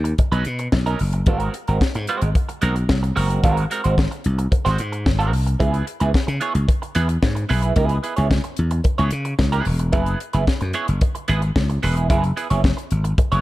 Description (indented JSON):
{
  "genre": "disco",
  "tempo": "111 BPM",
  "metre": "4/4",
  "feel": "straight",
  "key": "C# dorian",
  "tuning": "A4 = 441 Hz",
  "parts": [
    { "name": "electric guitar at the edge of break-up", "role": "accompaniment", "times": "0.0-13.4 s", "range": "F#3 to C#5", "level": "-25 LUFS", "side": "right 4 dB", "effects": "wah" },
    { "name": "slap bass", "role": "bass", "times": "0.0-13.4 s", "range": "E1 to C#3", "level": "-20 LUFS", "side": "equal", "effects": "none" },
    { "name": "tight funk drum kit", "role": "drums", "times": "0.1-13.4 s", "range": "hi-hat, kick drum, snare drum", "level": "-21 LUFS", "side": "left 1 dB", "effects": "none" }
  ],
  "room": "small room reverb",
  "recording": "dark, warm production",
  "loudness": "-18 LUFS",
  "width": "side -16 dB against mid",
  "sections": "0.0-13.4 A section",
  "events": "none",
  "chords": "0.0 Bmaj9; 1.3 G#9; 5.6 C#m7; 9.9 F#9sus4"
}